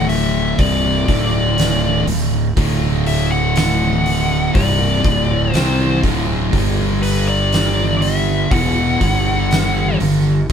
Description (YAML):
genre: stoner and doom metal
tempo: 60 BPM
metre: 4/4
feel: straight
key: unclear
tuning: A4 = 440 Hz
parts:
  - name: fuzz lead guitar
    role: melody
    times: 0.0-10.0 s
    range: B4 to F#5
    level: -21 LUFS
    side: left 3 dB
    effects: distortion, ping-pong delay
  - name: fuzz guitar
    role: riff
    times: 0.0-10.5 s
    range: C2 to C4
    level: -22 LUFS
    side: left 9 dB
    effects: distortion
  - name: thick fuzz guitar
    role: riff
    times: 0.0-10.5 s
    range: C2 to C4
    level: -20 LUFS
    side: right 8 dB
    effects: distortion
  - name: fuzz fingered electric bass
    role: bass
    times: 0.0-10.5 s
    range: C1 to C2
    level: -20 LUFS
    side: equal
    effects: overdrive, tube saturation
  - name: oversized low-tuned drum kit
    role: drums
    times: 0.1-10.5 s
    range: hi-hat, kick drum, snare drum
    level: -21 LUFS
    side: equal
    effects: none
room: light reverb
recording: band playing live in one room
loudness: -14 LUFS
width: side -8 dB against mid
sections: 0.0-10.5 A section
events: none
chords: 0.0 D5; 6.5 G5